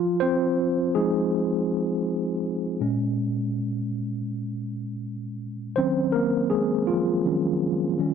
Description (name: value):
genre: R&B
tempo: 81 BPM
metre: 4/4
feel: swing 59% on 16ths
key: Eb dorian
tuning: A4 = 440 Hz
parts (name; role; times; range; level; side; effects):
- mellow tine electric piano; solo; 0.0-8.1 s; Bb2 to C5; -23 LUFS; equal; medium stereo tremolo
room: digital ambience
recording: dry, close 1970s-style studio recording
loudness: -23 LUFS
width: side -7 dB against mid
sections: 0.0-8.1 A section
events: tine electric piano solo 0.0-8.1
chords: 0.0 Fm7; 2.8 Bbm7; 5.8 Ebm11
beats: 0.57 1.31 2.06 | 2.80 3.54 4.28 5.02 | 5.76 6.50 7.24 7.98